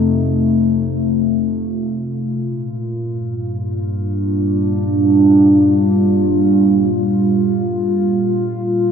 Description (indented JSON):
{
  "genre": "ambient",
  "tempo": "free time",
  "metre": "none",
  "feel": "none",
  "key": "unclear",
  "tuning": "A4 = 441 Hz",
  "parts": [
    { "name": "warbly tape-like pad", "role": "sustained chords", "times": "0.0-8.9 s", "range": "Bb2 to F4", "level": "-14 LUFS", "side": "equal", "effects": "chorus, built-in reverb" },
    { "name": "deep rumbling drone", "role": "bass", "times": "0.0-8.9 s", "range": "F2 to G2", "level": "-25 LUFS", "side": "equal", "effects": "built-in reverb" }
  ],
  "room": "wet lush hall reverb, RT60 2.6 s",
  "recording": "none",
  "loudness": "-14 LUFS",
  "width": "side -7 dB against mid",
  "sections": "0.0-8.9 A section",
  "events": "filter sweep on ambient pad 0.0-8.9",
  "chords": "0.0 F7; 2.4 Gm7",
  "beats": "free time"
}